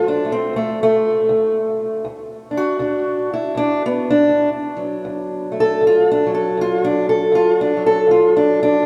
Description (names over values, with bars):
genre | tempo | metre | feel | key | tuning
acoustic country blues, solo or duo | 80 BPM | 4/4 | swing 60% on 8ths | D major | A4 = 440 Hz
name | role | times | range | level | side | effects
fingerpicked steel-string acoustic guitar | solo | 0.0-8.9 s | D2 to A4 | -17 LUFS | equal | none
room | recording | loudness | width
wet cathedral reverb, RT60 5.8 s | recorded in a church or concert hall | -17 LUFS | mono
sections
0.0-8.9 A section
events
steel-string acoustic guitar solo 0.0-8.9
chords
0.0 D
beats
0.54 | 1.29 2.05 2.80 3.56 | 4.31 5.07 5.82 6.57 | 7.32 8.08 8.83